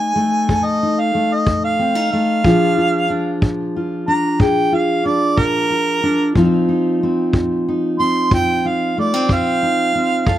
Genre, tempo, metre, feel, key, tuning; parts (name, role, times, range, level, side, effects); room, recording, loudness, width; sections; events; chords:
acoustic country blues, solo or duo; 61 BPM (dotted quarters); 12/8; straight; F mixolydian; A4 = 437 Hz
mellow harmonica; melody; 0.0-10.4 s; Bb4 to C6; -18 LUFS; right 3 dB; slapback echo
fingerpicked steel-string acoustic guitar; accompaniment; 0.0-10.4 s; F2 to A4; -17 LUFS; left 1 dB; slapback echo
kick drum; drums; 0.5-10.4 s; -18 LUFS; equal
little or no reverb; recorded outdoors, with no room sound; -14 LUFS; side -12 dB against mid
0.0-10.4 A section
0.0 F7; 2.4 Bb7; 6.4 F7(no3)